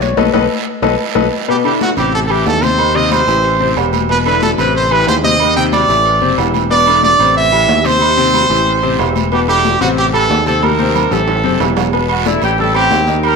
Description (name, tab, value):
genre	latin, salsa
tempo	184 BPM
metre	4/4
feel	straight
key	unclear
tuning	A4 = 437 Hz
part	clear concert grand piano	accompaniment	0.0-13.3 s	B2 to C6	-17 LUFS	left 8 dB	none
part	modern bright fingered electric bass	bass	0.0-13.4 s	E1 to D#2	-19 LUFS	right 2 dB	none
part	congas	percussion	0.0-13.4 s	none	-22 LUFS	left 9 dB	none
part	guiro	percussion	0.0-13.4 s	none	-27 LUFS	right 14 dB	none
part	timbales and agogo bells	percussion	0.0-13.4 s	none	-20 LUFS	right 14 dB	none
part	brilliant trumpet	melody	1.5-11.6 s	F#4 to G5	-13 LUFS	right 3 dB	none
part	clear horn section	melody	12.1-13.4 s	C4 to A#4	-14 LUFS	equal	none
room	moderate echo chamber reverb, RT60 1.5 s, small room ambience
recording	1960s-style stereo with parts hard left and right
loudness	-10 LUFS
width	side -4 dB against mid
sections	0.0-1.5 A section; 1.5-11.9 B section; 11.9-13.4 C section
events	grand piano solo 0.0-1.5; band accent 0.2-1.5; drum fill 0.8-1.5, 10.6-11.9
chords	0.2 B7; 1.5 E5; 2.1 Am7; 4.1 E5; 4.7 Am7; 6.7 E5; 7.4 Am7; 9.3 Em7; 10.0 Am7; 11.9 E5; 12.6 Am7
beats	| 0.18 0.51 0.83 1.16 | 1.48 1.81 2.14 2.46 | 2.79 3.12 3.44 3.77 | 4.09 4.42 4.75 5.07 | 5.40 5.73 6.05 6.38 | 6.71 7.03 7.36 7.68 | 8.01 8.34 8.66 8.99 | 9.32 9.64 9.97 10.30 | 10.62 10.95 11.28 11.60 | 11.93 12.26 12.58 12.91 | 13.23